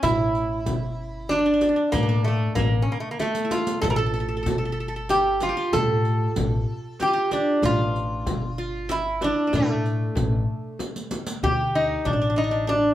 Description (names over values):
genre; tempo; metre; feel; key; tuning
Arabic maqam ensemble; 95 BPM; 3/4; straight; A maqam hijaz; A4 = 441 Hz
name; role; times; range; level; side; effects
lap resonator guitar; melody; 0.0-12.9 s; A3 to Bb4+25c; -24 LUFS; right 1 dB; none
qanun; second line; 0.0-12.9 s; A3 to A4; -30 LUFS; right 1 dB; none
upright bass; bass; 0.0-12.9 s; G1 to A2; -27 LUFS; left 1 dB; none
darbuka; percussion; 0.0-12.8 s; none; -31 LUFS; equal; none
frame drum; percussion; 0.0-12.8 s; none; -31 LUFS; left 2 dB; none
riq; percussion; 0.0-11.4 s; none; -36 LUFS; right 1 dB; none
room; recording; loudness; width
wet small room ambience, RT60 0.5 s; heard from further back in the room; -21 LUFS; side -13 dB against mid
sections
0.0-11.4 A section; 11.4-12.9 B section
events
drum fill 3.2-3.8, 10.8-11.4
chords
none